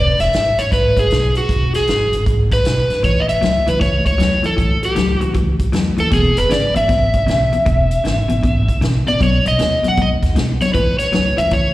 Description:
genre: electric blues shuffle.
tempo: 156 BPM.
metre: 4/4.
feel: swing 65% on 8ths.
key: E major.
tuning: A4 = 442 Hz.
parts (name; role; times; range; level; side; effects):
overdriven slide guitar; melody; 0.0-11.7 s; F#4 to F#5; -17 LUFS; equal; slapback echo.
upright bass; bass; 0.0-11.7 s; E1 to E2; -19 LUFS; equal; none.
vintage drum kit; drums; 0.2-11.6 s; hi-hat, kick drum, snare drum; -20 LUFS; equal; none.
electric guitar through a small old amp; riff; 3.0-11.7 s; E2 to G#3; -20 LUFS; left 2 dB; slapback echo.
room: little or no reverb.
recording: live gig heard through the venue's PA, recital hall reverb.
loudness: -13 LUFS.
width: side -16 dB against mid.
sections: 0.0-11.7 A section.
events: none.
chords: 0.0 E; 3.0 A; 6.1 E; 9.2 B; 10.7 A.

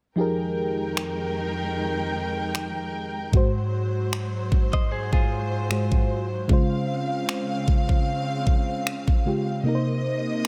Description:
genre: contemporary R&B.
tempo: 76 BPM.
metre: 4/4.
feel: swing 54% on 16ths.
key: F minor.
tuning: A4 = 440 Hz.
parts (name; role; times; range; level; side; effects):
mellow FM electric piano; accompaniment; 0.2-10.5 s; Ab2 to C5; -29 LUFS; equal; chorus.
warm studio string section; sustained chords; 0.2-10.5 s; F2 to G5; -32 LUFS; equal; sidechain pumping.
trap drum kit; drums; 1.0-10.5 s; finger snaps, kick drum; -24 LUFS; equal; none.
direct-recorded clean electric guitar; arpeggios; 4.7-6.3 s; F4 to Eb5; -34 LUFS; equal; tape echo.
room: little or no reverb.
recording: none.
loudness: -25 LUFS.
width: mono.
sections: 0.2-10.5 A section.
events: kick muted 9.7-10.5.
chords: 0.2 Fm11; 3.3 Ab7; 6.5 Dbmaj7; 9.7 Cm7.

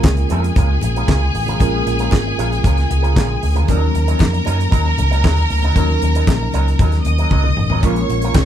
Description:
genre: disco.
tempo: 116 BPM.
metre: 4/4.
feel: straight.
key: Bb minor.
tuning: A4 = 438 Hz.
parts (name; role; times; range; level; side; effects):
clear studio string section; second line; 0.0-8.5 s; Ab4 to Eb6; -23 LUFS; equal; none.
electric guitar with an envelope filter; accompaniment; 0.0-8.4 s; Gb3 to Bb4; -27 LUFS; right 5 dB; none.
mellow tine electric piano; accompaniment; 0.0-8.5 s; F3 to Bb4; -24 LUFS; equal; medium stereo tremolo.
overdriven fingered electric bass; bass; 0.0-8.5 s; Ab1 to Gb2; -17 LUFS; equal; none.
damped 70s drum kit; drums; 0.0-8.5 s; handclaps, hi-hat, kick drum, snare drum, toms; -17 LUFS; equal; none.
congas; percussion; 0.0-8.5 s; none; -27 LUFS; left 3 dB; none.
room: moderate studio reverb, RT60 0.5 s.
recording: band playing live in one room.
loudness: -14 LUFS.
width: side -10 dB against mid.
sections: 0.0-8.5 A section.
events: drum fill 7.3-7.8.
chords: 0.0 Bbm7; 3.7 Ebm7; 7.8 Bbm7.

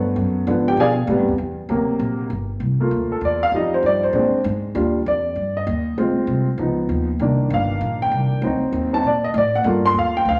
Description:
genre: jazz, big band swing.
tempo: 196 BPM.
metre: 4/4.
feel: swing 63% on 8ths.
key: G minor.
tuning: A4 = 440 Hz.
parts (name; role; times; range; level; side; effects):
warm upright piano; accompaniment; 0.0-10.4 s; C3 to C6; -21 LUFS; equal; none.
upright bass; bass; 0.0-10.4 s; G1 to B2; -25 LUFS; equal; none.
room: wet large studio reverb, RT60 1.1 s.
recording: none.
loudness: -20 LUFS.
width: mono.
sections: 0.0-2.3 A section; 2.3-10.4 A section.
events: upright piano solo 0.0-2.3, 2.3-10.4.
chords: 0.5 G#dim7; 1.1 Am7; 1.7 D7b13; 2.3 Gm9; 3.5 Fsus2; 4.1 Bb9; 4.8 Ebmaj7; 6.0 Dm7b5; 6.6 C#9; 7.2 Cm7; 8.4 D7b9; 9.7 Gm9.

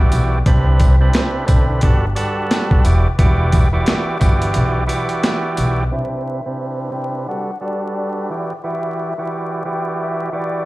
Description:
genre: hip hop, boom-bap hip-hop.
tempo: 88 BPM.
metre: 4/4.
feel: swing 59% on 16ths.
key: E minor.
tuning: A4 = 441 Hz.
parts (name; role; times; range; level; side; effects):
overdriven tonewheel organ; accompaniment; 0.0-10.7 s; C3 to D5; -21 LUFS; right 1 dB; cassette tape, high-pass filter, low-pass filter, plate reverb.
upright bass; bass; 0.1-5.9 s; E1 to C2; -16 LUFS; equal; none.
boom bap sampler-style drum kit; drums; 0.1-5.8 s; hi-hat, kick drum, snare drum; -15 LUFS; equal; none.
tambourine; percussion; 0.1-5.8 s; none; -38 LUFS; left 7 dB; none.
mellow hollow silver concert flute; melody; 5.9-10.7 s; D5 to G5; -28 LUFS; left 2 dB; high-pass filter, low-pass filter, plate reverb, tape echo.
room: light reverb.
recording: played on a big sound system in a bare room, large studio reverb, vinyl crackle.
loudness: -15 LUFS.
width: side -19 dB against mid.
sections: 0.0-5.9 A section; 5.9-10.7 B section.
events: break 4.6-5.9; filter sweep 5.9-10.7.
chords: 0.5 Cmaj9; 1.8 Gmaj7; 2.8 Em7; 5.9 Cmaj9; 7.3 Gmaj7; 8.3 Em7.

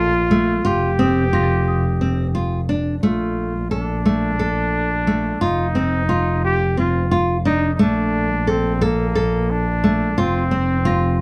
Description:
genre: contemporary instrumental, chamber music in an uneven meter.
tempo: 176 BPM (eighths).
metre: 7/8.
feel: straight.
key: F mixolydian.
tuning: A4 = 440 Hz.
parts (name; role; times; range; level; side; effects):
mellow trumpet; second line; 0.0-11.2 s; Bb3 to G4; -25 LUFS; equal; none.
nylon-string guitar; arpeggios; 0.0-11.2 s; A3 to A4; -23 LUFS; equal; none.
muted double bass; bass; 0.0-11.2 s; F1 to Bb1; -24 LUFS; equal; none.
celesta; texture; 1.0-2.7, 10.9-11.2 s; Eb6 to Bb6; -35 LUFS; equal; none.
room: light reverb.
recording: dark, warm production.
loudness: -19 LUFS.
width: mono.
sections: 0.0-11.2 A section.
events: none.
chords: 0.0 Bbmaj7(no3); 0.7 F7sus4; 3.0 Bbmaj7; 5.4 F5; 7.8 Bbmaj7; 10.2 Fsus4.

